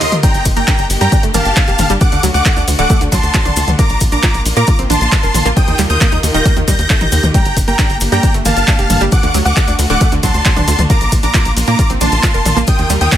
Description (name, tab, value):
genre	uplifting trance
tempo	135 BPM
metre	4/4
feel	straight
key	G minor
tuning	A4 = 440 Hz
part	big supersaw lead	melody	0.0-13.2 s	Eb5 to Bb6	-17 LUFS	equal	sidechain pumping, digital delay
part	bright studio string section	sustained chords	0.0-13.2 s	Eb3 to Bb4	-23 LUFS	left 1 dB	sidechain pumping
part	wide unison pluck	arpeggios	0.0-13.2 s	D2 to Bb4	-20 LUFS	right 3 dB	sidechain pumping, digital delay
part	punchy analog drum machine	drums	0.0-13.2 s	handclaps, hi-hat, ride cymbal, toms	-19 LUFS	left 1 dB	none
part	electronic kick drum	drums	0.2-13.2 s	none	-13 LUFS	equal	none
part	maracas	percussion	0.2-13.2 s	none	-24 LUFS	left 4 dB	none
part	tight sequencer bass	bass	0.3-13.1 s	D1 to Bb2	-16 LUFS	equal	sidechain pumping
room	digital ambience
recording	none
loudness	-10 LUFS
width	side -11 dB against mid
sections	0.0-13.2 A section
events	break 0.0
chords	0.2 Gm; 2.0 D; 3.8 Bb; 5.6 Ebadd9; 7.3 Gm; 9.1 D; 10.9 Bb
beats	| 0.23 0.68 1.12 1.57 | 2.01 2.46 2.90 3.34 | 3.79 4.23 4.68 5.12 | 5.57 6.01 6.46 6.90 | 7.34 7.79 8.23 8.68 | 9.12 9.57 10.01 10.46 | 10.90 11.34 11.79 12.23 | 12.68 13.12